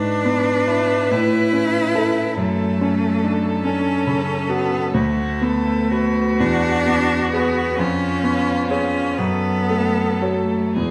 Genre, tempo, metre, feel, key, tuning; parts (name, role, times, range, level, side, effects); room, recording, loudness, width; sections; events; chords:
classical, slow romantic movement for piano trio; 35-48 BPM (dotted quarters); 6/8; rubato; A4 = 445 Hz
warm violin; melody; 0.0-10.9 s; E#4 to B4; -27 LUFS; equal
clear cello; second line; 0.0-10.9 s; G#3 to E4; -24 LUFS; equal
clear grand piano; accompaniment; 0.0-10.9 s; D2 to C#5; -22 LUFS; equal
moderate scoring stage reverb, RT60 1.5 s; -19 LUFS; mono
0.0-10.9 A section
0.0 E7/G#; 1.1 A; 2.4 F#m; 4.9 Bm7/D; 6.4 E7; 7.8 C#7/E#; 9.2 F#m